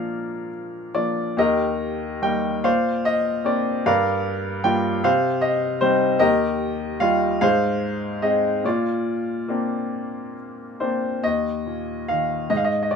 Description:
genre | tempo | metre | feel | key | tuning
classical, lyrical solo piano | 45-52 BPM (dotted quarters) | 6/8 | rubato | Eb major | A4 = 437 Hz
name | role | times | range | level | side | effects
bright grand piano | solo | 0.0-13.0 s | Eb2 to G5 | -20 LUFS | left 1 dB | none
room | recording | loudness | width
light reverb | minimal, uncompressed stereo recording | -20 LUFS | side -6 dB against mid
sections
0.0-11.2 A section; 11.2-13.0 A section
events
none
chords
0.0 Bb; 1.4 Eb; 2.6 Bbadd9; 3.9 Gm7; 5.0 Cm; 6.2 Ebadd9; 7.4 Ab; 8.6 Bbadd9; 11.2 Eb5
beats
0.08 | 1.38 2.65 | 3.86 5.04 | 6.21 7.41 | 8.64 9.92 | 11.23 12.50

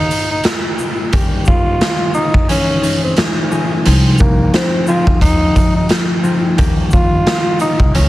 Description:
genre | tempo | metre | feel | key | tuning
hip hop, boom-bap hip-hop | 88 BPM | 4/4 | swing 59% on 16ths | Ab major | A4 = 440 Hz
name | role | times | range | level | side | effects
growling tenor saxophone | melody | 0.0-8.1 s | Bb3 to F4 | -19 LUFS | equal | high-pass filter, low-pass filter, ping-pong delay
upright bass | bass | 0.0-8.1 s | C2 to Eb2 | -15 LUFS | equal | none
raw garage drum kit | drums | 0.1-8.1 s | hi-hat, kick drum, shaker, snare drum | -14 LUFS | equal | none
concert harp | accompaniment | 1.1-8.1 s | Eb3 to Ab4 | -18 LUFS | left 1 dB | high-pass filter, low-pass filter
room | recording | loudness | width
small room ambience | dense, heavily limited modern master, vinyl crackle | -11 LUFS | side -16 dB against mid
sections
0.0-8.1 A section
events
break 0.0-1.1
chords
0.0 N.C.; 1.1 Eb7; 2.5 Dbmadd9; 3.9 Ab6/C; 6.6 Eb7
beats
0.45 | 1.13 1.81 2.49 3.18 | 3.86 4.54 5.22 5.90 | 6.58 7.27 7.95

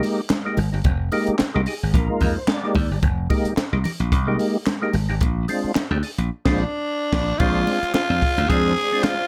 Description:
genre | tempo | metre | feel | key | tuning
funk | 110 BPM | 4/4 | swing 56% on 16ths | F dorian | A4 = 440 Hz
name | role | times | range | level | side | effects
percussive tonewheel organ | stabs | 0.0-9.1 s | Ab3 to D5 | -26 LUFS | equal | chorus vibrato, slow rotary speaker
compact cocktail drum kit | drums | 0.0-9.2 s | crash cymbal, handclaps, hi-hat, kick drum, snare drum | -26 LUFS | equal | none
congas | percussion | 0.0-9.2 s | none | -30 LUFS | equal | none
slap bass | bass | 0.6-8.7 s | F1 to F2 | -25 LUFS | equal | none
growling tenor saxophone | melody | 6.6-9.3 s | D4 to Ab4 | -24 LUFS | equal | slapback echo
string machine, full ensemble | sustained chords | 7.4-9.3 s | Ab4 to D5 | -34 LUFS | equal | phaser, ensemble chorus
room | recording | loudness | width
light reverb | none | -21 LUFS | mono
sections
0.0-7.4 A section; 7.4-9.3 B section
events
tonewheel organ fill 1.4-3.0; band accent 6.3-7.4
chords
0.0 Fm11; 5.2 Bb9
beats
0.31 | 0.85 1.40 1.94 2.49 | 3.03 3.58 4.12 4.67 | 5.21 5.76 6.31 6.85 | 7.40 7.95 8.49 9.04

